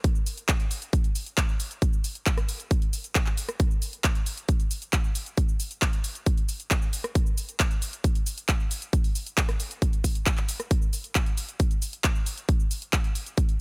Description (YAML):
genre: trance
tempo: 135 BPM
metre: 4/4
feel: straight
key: none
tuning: none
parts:
  - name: electronic kick drum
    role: drums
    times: 0.0-13.5 s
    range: none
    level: -27 LUFS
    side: equal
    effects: none
  - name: punchy analog drum machine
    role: drums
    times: 0.0-13.6 s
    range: handclaps, hi-hat, rim click, shaker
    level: -33 LUFS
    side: equal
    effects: overdrive
room: digital ambience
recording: none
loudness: -27 LUFS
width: mono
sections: 0.0-13.6 A section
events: none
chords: none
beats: | 0.04 0.49 0.93 1.38 | 1.82 2.26 2.71 3.15 | 3.60 4.04 4.49 4.93 | 5.38 5.82 6.26 6.71 | 7.15 7.60 8.04 8.49 | 8.93 9.38 9.82 10.26 | 10.71 11.15 11.60 12.04 | 12.49 12.93 13.38